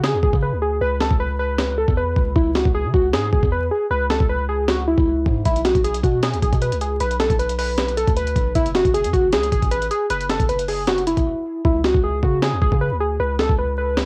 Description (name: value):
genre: hip hop, trap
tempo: 155 BPM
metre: 4/4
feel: half-time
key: C# phrygian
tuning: A4 = 440 Hz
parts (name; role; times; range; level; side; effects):
- warbly lo-fi synth keys; melody; 0.0-14.1 s; E4 to B4; -23 LUFS; equal; chorus, low-pass filter
- long sustained 808-style bass; bass; 0.0-14.1 s; F#1 to C#3; -26 LUFS; equal; none
- breakbeat sampler-style drum kit; drums; 0.0-14.1 s; hi-hat, kick drum, snare drum; -23 LUFS; equal; none
room: digital ambience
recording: home recording on cassette, vinyl crackle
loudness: -20 LUFS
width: mono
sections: 0.0-14.1 A section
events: break 0.0-5.5, 11.3-11.6; hi-hats muted 11.6-14.1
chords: 0.0 C#7(no3); 5.5 N.C.; 11.6 C#7(no3)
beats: 0.04 0.42 | 0.81 1.20 1.58 1.97 | 2.36 2.75 3.13 3.52 | 3.91 4.29 4.68 5.07 | 5.46 5.84 6.23 6.62 | 7.00 7.39 7.78 8.16 | 8.55 8.94 9.33 9.71 | 10.10 10.49 10.88 11.26 | 11.65 12.04 12.42 12.81 | 13.20 13.58 13.97